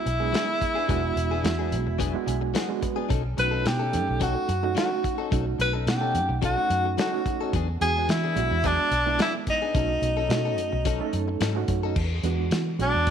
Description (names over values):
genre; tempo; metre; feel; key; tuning
straight-eighth soul blues; 108 BPM; 4/4; swing 54% on 16ths; unclear; A4 = 439 Hz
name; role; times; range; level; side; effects
warm tenor saxophone; melody; 0.0-13.1 s; D4 to B4; -26 LUFS; left 1 dB; slapback echo
overdriven reed electric piano; accompaniment; 0.0-13.1 s; G#3 to G#5; -31 LUFS; right 12 dB; fast tremolo
direct-recorded clean electric guitar; stabs; 0.1-12.0 s; F#3 to A4; -33 LUFS; left 12 dB; warbly pitch drift
vintage muted fingered electric bass; bass; 0.1-13.1 s; E1 to E3; -27 LUFS; equal; none
warm soul drum kit; drums; 0.1-13.1 s; crash cymbal, hi-hat, kick drum, snare drum; -29 LUFS; left 1 dB; none
room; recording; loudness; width
light reverb; 1960s-style stereo with parts hard left and right; -23 LUFS; side -8 dB against mid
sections
0.0-12.0 A section; 12.0-13.1 B section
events
reed electric piano fill 2.0-3.1; tenor saxophone solo 12.0-13.1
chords
0.0 E9; 3.1 B9; 7.5 E9; 9.7 B9; 12.0 E9